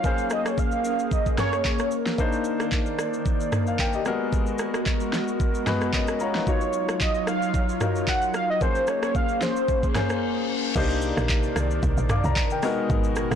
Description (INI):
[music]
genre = amapiano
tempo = 112 BPM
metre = 4/4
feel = swing 55% on 16ths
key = C phrygian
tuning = A4 = 441 Hz
[part]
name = warm velvety synth lead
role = melody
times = 0.0-1.9, 6.5-10.5 s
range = C5 to Gb5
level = -27 LUFS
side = right 2 dB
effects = chorus, tape echo
[part]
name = warm grand piano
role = accompaniment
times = 0.0-13.4 s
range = Gb3 to D6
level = -28 LUFS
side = left 5 dB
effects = none
[part]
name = airy breathy pad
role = sustained chords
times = 0.0-13.4 s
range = Cb3 to D5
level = -30 LUFS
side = equal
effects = chorus
[part]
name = smooth R&B drum kit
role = drums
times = 0.0-13.4 s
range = crash cymbal, handclaps, hi-hat, kick drum, rim click, shaker, snare drum, toms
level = -26 LUFS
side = right 1 dB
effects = overdrive, vintage 12-bit sampler grit
[part]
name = reverse cymbal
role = sound effects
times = 9.9-10.8 s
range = none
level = -33 LUFS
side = left 5 dB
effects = none
[part]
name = woody log drum bass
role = bass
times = 10.8-13.4 s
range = Ab1 to C2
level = -26 LUFS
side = right 1 dB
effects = none
[sound]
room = little or no reverb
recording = blown-out, overdriven recording, overdrive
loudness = -22 LUFS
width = side -8 dB against mid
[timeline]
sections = 0.0-10.8 A section; 10.8-13.4 B section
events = grand piano fill 5.7-6.5; reverse cymbal 9.9-10.8; break 10.2-10.8; drop 10.8-13.4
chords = 0.0 Bbm9; 2.2 Cm9; 4.1 Abm9; 6.5 Ebm9; 8.6 Bbm9; 10.8 Cm9; 12.6 Abm9